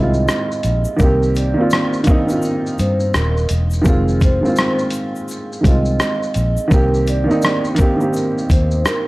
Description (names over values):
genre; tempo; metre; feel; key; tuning
lo-fi hip hop; 84 BPM; 4/4; swing 61% on 16ths; F dorian; A4 = 439 Hz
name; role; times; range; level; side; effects
vibraphone with soft mallets; melody; 0.0-9.1 s; Ab4 to Eb5; -24 LUFS; right 2 dB; low-pass filter
warm upright piano; accompaniment; 0.0-9.1 s; Eb3 to G4; -18 LUFS; right 1 dB; low-pass filter
vintage muted fingered electric bass; bass; 0.0-8.8 s; Eb1 to G2; -18 LUFS; equal; tube saturation
dusty soul sampler-style drum kit; drums; 0.1-9.1 s; hi-hat, kick drum, rim click, shaker; -17 LUFS; equal; none
egg shaker; percussion; 0.3-9.1 s; none; -39 LUFS; left 3 dB; none
room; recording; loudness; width
small room ambience; dry, gritty hardware recording, vinyl crackle; -14 LUFS; side -20 dB against mid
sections
0.0-9.1 A section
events
none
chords
0.0 Fm7; 1.0 Cm7; 3.9 Fm7; 6.7 Cm7